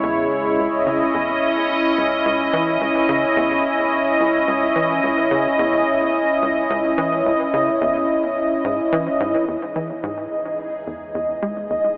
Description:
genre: ambient, sequencer-driven space music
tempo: 108 BPM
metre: 4/4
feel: straight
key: C# minor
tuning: A4 = 440 Hz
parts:
  - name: sweeping resonant pad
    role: sustained chords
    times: 0.0-12.0 s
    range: C#3 to D#5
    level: -17 LUFS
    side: equal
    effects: chorus
  - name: tight sequencer bass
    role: riff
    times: 0.0-11.8 s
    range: C#2 to G#3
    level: -28 LUFS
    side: equal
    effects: lush chorus, tape echo
  - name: warm sub bass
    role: bass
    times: 9.5-12.0 s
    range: C#2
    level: -48 LUFS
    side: equal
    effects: none
  - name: bubbling stepped-filter texture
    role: texture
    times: 9.5-12.0 s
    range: D#5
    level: -24 LUFS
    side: equal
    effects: chorus, built-in reverb
room: wet huge ambient reverb, RT60 7.5 s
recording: telephone sound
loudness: -17 LUFS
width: side -30 dB against mid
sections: 0.0-9.5 A section; 9.5-12.0 A section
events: none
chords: 0.0 E; 0.6 C#madd9

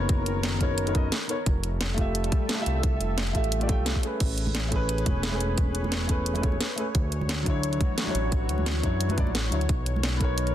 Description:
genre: liquid drum and bass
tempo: 175 BPM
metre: 4/4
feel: swing 54% on 16ths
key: A major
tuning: A4 = 440 Hz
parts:
  - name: dark concert grand piano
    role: accompaniment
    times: 0.0-10.5 s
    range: F#3 to G5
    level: -31 LUFS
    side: left 1 dB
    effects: ping-pong delay
  - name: lush unison pad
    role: sustained chords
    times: 0.0-10.5 s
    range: D#3 to E5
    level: -35 LUFS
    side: equal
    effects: chorus
  - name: smooth synth bass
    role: bass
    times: 0.0-10.5 s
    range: E1 to F#2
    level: -28 LUFS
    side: equal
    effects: none
  - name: electronic kick drum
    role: drums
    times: 0.1-10.3 s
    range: none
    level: -26 LUFS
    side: equal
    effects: none
  - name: garage drum kit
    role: drums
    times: 0.1-10.5 s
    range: crash cymbal, hi-hat, snare drum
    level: -31 LUFS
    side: equal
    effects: none
  - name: congas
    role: percussion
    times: 4.5-10.0 s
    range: none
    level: -37 LUFS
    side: right 4 dB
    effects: none
room: digital ambience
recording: dense, heavily limited modern master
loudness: -24 LUFS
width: side -11 dB against mid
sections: 0.0-10.5 A section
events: none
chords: 0.0 Bmaj9; 1.5 Fmaj9; 4.2 Amaj9; 6.9 Dmaj9; 9.7 Bmaj9

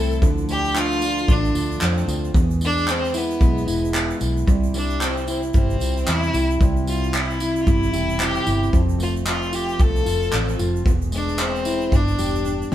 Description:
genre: acoustic pop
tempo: 113 BPM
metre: 4/4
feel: swing 60% on 16ths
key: unclear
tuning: A4 = 440 Hz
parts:
  - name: clear violin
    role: melody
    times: 0.0-12.7 s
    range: B3 to A4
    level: -25 LUFS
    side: left 1 dB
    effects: none
  - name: fingerpicked plugged-in steel-string acoustic guitar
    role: accompaniment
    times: 0.0-12.7 s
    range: E2 to G4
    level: -25 LUFS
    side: left 1 dB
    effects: none
  - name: nylon-string guitar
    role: arpeggios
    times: 0.0-12.7 s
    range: E3 to A4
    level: -33 LUFS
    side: right 5 dB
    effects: none
  - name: vintage muted fingered electric bass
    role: bass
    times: 0.0-12.7 s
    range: E1 to F2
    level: -24 LUFS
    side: equal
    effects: none
  - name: egg shaker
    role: percussion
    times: 0.1-12.7 s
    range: none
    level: -43 LUFS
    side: right 5 dB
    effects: none
  - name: loose indie drum kit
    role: drums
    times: 0.2-12.7 s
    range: handclaps, kick drum, snare drum, tambourine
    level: -22 LUFS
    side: equal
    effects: none
room: light reverb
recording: band playing live in one room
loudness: -18 LUFS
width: side -12 dB against mid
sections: 0.0-12.7 A section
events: drum fill 12.5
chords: 0.2 Dm; 2.3 E; 4.5 C; 8.7 F; 10.9 E; 11.9 G

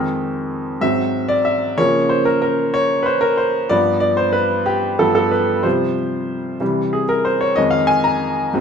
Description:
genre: gospel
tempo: 62 BPM (dotted quarters)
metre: 6/8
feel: straight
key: F minor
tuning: A4 = 440 Hz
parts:
  - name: clear baby grand piano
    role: solo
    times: 0.0-8.6 s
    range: F2 to Bb5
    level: -16 LUFS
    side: equal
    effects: none
room: wet large studio reverb, RT60 1.1 s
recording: band playing live in one room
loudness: -15 LUFS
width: side -6 dB against mid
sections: 0.0-8.6 A section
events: grand piano solo 0.0-8.6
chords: 0.0 Fm7; 0.8 Abaug7; 1.8 Db6; 3.7 G7; 5.6 Csus4; 6.6 C; 7.6 Fm7

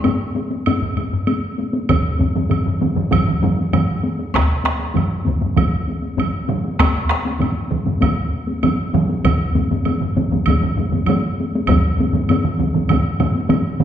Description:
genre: japanese traditional, taiko drum ensemble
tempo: 98 BPM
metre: 4/4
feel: straight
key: none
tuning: none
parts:
  - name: taiko ensemble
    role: percussion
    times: 0.0-13.8 s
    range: none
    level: -22 LUFS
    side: left 2 dB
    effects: none
  - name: taiko ensemble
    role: percussion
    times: 0.0-13.8 s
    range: none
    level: -23 LUFS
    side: left 2 dB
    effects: none
  - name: woodblock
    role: percussion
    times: 0.0-13.6 s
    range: none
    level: -28 LUFS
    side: right 4 dB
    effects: none
  - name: taiko ensemble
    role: percussion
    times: 1.9-13.8 s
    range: none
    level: -21 LUFS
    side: right 4 dB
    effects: none
  - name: taiko ensemble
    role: percussion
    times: 1.9-13.0 s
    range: none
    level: -22 LUFS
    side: equal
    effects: none
room: wet recital hall reverb, RT60 1.8 s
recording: recorded in a church or concert hall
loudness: -16 LUFS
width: side -10 dB against mid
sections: 0.0-4.4 A section; 4.4-13.8 B section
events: none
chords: none

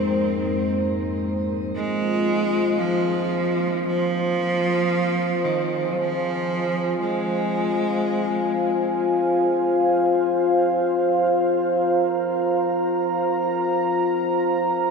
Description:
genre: dark ambient drone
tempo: free time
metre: none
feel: none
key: F minor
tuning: A4 = 440 Hz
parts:
  - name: clear cello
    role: melody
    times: 0.0-9.0 s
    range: Eb3 to C4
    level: -25 LUFS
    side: right 2 dB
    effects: shimmer reverb, tape echo
  - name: dark analog pad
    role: sustained chords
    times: 0.0-14.9 s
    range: F2 to Bb5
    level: -21 LUFS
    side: left 1 dB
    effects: chorus, shimmer reverb
room: wet cathedral reverb, RT60 6.8 s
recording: none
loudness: -20 LUFS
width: side -4 dB against mid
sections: 0.0-1.8 A section; 1.8-14.9 B section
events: none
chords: 0.0 Ab/F; 1.8 Fm

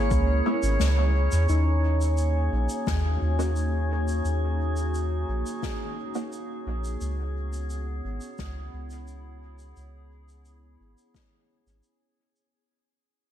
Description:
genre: ambient dub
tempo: 87 BPM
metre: 4/4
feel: straight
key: C# dorian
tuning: A4 = 440 Hz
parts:
  - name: warbly tape-like pad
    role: sustained chords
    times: 0.0-12.5 s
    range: A#3 to C#5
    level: -33 LUFS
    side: right 1 dB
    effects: chorus, built-in reverb
  - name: handpan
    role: arpeggios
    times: 0.0-3.2 s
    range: A#3 to C#5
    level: -34 LUFS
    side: equal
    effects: tape echo
  - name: soft dub sub bass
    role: bass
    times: 0.0-11.8 s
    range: G#1 to E2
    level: -25 LUFS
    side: equal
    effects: none
  - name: drifting glass-harmonics texture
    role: texture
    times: 0.0-12.5 s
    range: G#4 to C#5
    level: -37 LUFS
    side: left 1 dB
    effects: chorus, built-in reverb
  - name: electronic kick drum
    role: drums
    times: 0.1-11.3 s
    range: none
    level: -30 LUFS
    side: equal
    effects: none
  - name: shaker and snare drum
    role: drums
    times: 0.1-12.5 s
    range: none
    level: -36 LUFS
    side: left 6 dB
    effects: dub echo
  - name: filtered dub chord stab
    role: stabs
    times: 0.5-6.3 s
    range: G#3 to F#4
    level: -33 LUFS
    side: left 1 dB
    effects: phaser, ensemble chorus, dub echo
room: studio reverb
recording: none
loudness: -24 LUFS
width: side -11 dB against mid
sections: 0.0-1.5 A section; 1.5-12.5 B section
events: fade-out 1.5-12.5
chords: 0.0 C#m7; 1.5 D#m7; 7.0 C#m7

